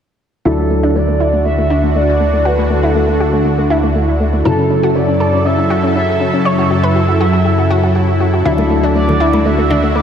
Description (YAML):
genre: progressive house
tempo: 120 BPM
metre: 4/4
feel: straight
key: D major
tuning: A4 = 438 Hz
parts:
  - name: expressive synth lead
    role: melody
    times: 0.5-10.0 s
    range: A4 to E5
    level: -19 LUFS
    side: right 1 dB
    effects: lush chorus, diffuse ambient delay
  - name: supersaw pad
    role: sustained chords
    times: 0.5-10.0 s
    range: C#3 to A4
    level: -17 LUFS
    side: equal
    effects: wide subtle chorus
  - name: analog pluck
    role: arpeggios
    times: 0.5-10.0 s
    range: A3 to C#5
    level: -18 LUFS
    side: left 1 dB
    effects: chorus, analog delay
  - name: felt-muted upright piano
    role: stabs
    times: 0.5-10.0 s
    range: C#3 to A4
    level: -20 LUFS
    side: left 3 dB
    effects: vintage 12-bit sampler grit, low-pass filter, analog delay
  - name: fat analog bass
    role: bass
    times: 0.5-10.0 s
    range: D2 to F#2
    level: -16 LUFS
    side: right 1 dB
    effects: none
  - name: vintage drum kit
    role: drums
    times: 0.5-10.0 s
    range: hi-hat, snare drum, tambourine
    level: -42 LUFS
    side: equal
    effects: none
  - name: congas and woodblock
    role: percussion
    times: 8.6-10.0 s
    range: none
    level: -22 LUFS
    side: left 3 dB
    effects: none
room: wet lush hall reverb, RT60 1.8 s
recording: dreamy mix soaked in reverb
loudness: -11 LUFS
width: side -8 dB against mid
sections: 0.5-10.0 A section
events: filter sweep on synth pluck 0.5-10.0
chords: 0.5 Dadd9; 4.5 F#m7; 8.5 Dadd9